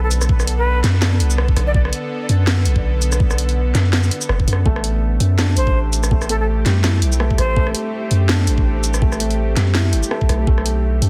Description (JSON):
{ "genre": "half-time drum and bass", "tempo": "165 BPM", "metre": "4/4", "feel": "swing 57% on 16ths, half-time", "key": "A dorian", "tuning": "A4 = 440 Hz", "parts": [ { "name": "bright silver concert flute", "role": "melody", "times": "0.0-1.8, 5.6-7.7 s", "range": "A4 to D5", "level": "-28 LUFS", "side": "equal", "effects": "delay" }, { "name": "bowed-like drone", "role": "sustained chords", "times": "0.0-11.1 s", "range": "D3 to A4", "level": "-30 LUFS", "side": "equal", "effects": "built-in reverb, sidechain pumping" }, { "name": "long sustained 808-style bass", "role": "bass", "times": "0.0-11.1 s", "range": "F#1 to F#2", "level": "-19 LUFS", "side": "equal", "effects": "none" }, { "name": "drum and bass drum kit", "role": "drums", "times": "0.1-11.1 s", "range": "hi-hat, rim click, shaker, snare drum", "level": "-25 LUFS", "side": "equal", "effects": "soft clipping on snare" }, { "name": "electronic kick drum", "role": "drums", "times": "0.3-10.6 s", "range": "none", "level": "-20 LUFS", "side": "equal", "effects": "none" }, { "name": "felt-muted upright piano", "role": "arpeggios", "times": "4.7-11.1 s", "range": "G3 to E4", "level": "-28 LUFS", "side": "equal", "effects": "delay" } ], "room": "light reverb", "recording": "dense, heavily limited modern master", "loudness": "-17 LUFS", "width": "mono", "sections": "0.0-11.1 A section", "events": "none", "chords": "0.0 Bm7; 4.7 Am7; 10.5 Bm7" }